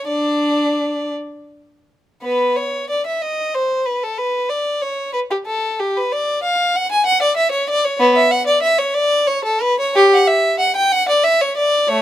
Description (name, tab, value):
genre	classical, baroque-style suite movement for unaccompanied violin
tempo	54-64 BPM (dotted quarters)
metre	6/8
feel	rubato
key	B minor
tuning	A4 = 440 Hz
part	rich violin	solo	0.0-12.0 s	A3 to G#5	-15 LUFS	equal	none
room	light reverb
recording	close, detailed microphones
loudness	-15 LUFS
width	side -12 dB against mid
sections	0.0-2.2 A section; 2.2-12.0 A section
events	none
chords	none